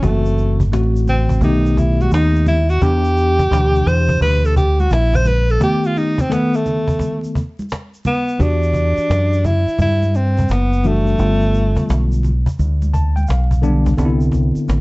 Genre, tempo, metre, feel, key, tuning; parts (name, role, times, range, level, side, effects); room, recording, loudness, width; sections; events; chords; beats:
hip hop, jazz-hop; 86 BPM; 4/4; swing 65% on 16ths; E minor; A4 = 440 Hz
breathy tenor saxophone; melody; 0.0-12.3 s; A3 to C5; -19 LUFS; equal
mellow tine electric piano; accompaniment; 0.0-14.8 s; B2 to A5; -20 LUFS; left 1 dB; medium stereo tremolo
deep dub fingered electric bass; bass; 0.0-14.8 s; F#1 to G2; -16 LUFS; equal
cajon; drums; 0.0-14.8 s; -22 LUFS; equal
egg shaker and congas; percussion; 0.0-14.8 s; -28 LUFS; right 1 dB
light reverb; dark, warm production, vinyl crackle, nothing above 7.9 kHz; -14 LUFS; side -23 dB against mid
0.0-8.4 A section; 8.4-14.8 B section
tenor saxophone solo 0.0-8.4; break 5.6-8.4; tine electric piano fill 12.6-14.0
0.0 F#m7b5; 1.4 B7b13; 2.8 Em7; 5.6 Baug7; 8.4 Em9; 11.2 G7; 14.0 Cmaj9
| 0.03 0.72 1.42 2.12 | 2.82 3.52 4.21 4.91 | 5.61 6.31 7.00 7.70 | 8.40 9.10 9.79 10.49 | 11.19 11.89 12.59 13.28 | 13.98 14.68